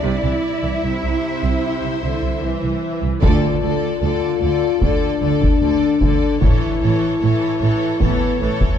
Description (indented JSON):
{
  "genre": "cinematic, epic orchestral film score",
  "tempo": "75 BPM",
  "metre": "4/4",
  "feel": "straight",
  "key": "D minor",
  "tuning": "A4 = 440 Hz",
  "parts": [
    { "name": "rich studio violin section", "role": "melody", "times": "0.0-8.8 s", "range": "C#5 to E5", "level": "-28 LUFS", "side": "left 6 dB", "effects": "none" },
    { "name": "rich studio violin section", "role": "second line", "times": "0.0-8.8 s", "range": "A4 to D5", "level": "-29 LUFS", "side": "left 2 dB", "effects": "none" },
    { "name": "rich symphonic viola section", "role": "accompaniment", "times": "0.0-8.8 s", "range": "C3 to E3", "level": "-27 LUFS", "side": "right 1 dB", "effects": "none" },
    { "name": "clear symphonic cello section", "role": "bass", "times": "0.0-8.5 s", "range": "D2 to E4", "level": "-25 LUFS", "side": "right 4 dB", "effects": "none" },
    { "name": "warm symphonic double bass section", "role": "bass", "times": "0.0-8.5 s", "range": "A1 to D2", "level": "-22 LUFS", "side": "right 4 dB", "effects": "none" },
    { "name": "mellow French horn section", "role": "sustained chords", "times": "2.0-8.8 s", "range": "A3 to F4", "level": "-20 LUFS", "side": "left 6 dB", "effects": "none" },
    { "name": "taiko ensemble", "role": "drums", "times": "3.2-8.8 s", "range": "none", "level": "-19 LUFS", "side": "equal", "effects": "none" },
    { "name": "timpani", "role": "percussion", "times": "3.2-4.4 s", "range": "D3", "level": "-30 LUFS", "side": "right 1 dB", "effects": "none" }
  ],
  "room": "moderate scoring stage reverb, RT60 1.9 s",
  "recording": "dark, warm production",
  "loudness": "-16 LUFS",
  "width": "side -9 dB against mid",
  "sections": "0.0-3.2 A section; 3.2-8.8 B section",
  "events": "band accent 3.2-4.0",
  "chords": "0.0 C; 3.2 Dm; 6.4 A"
}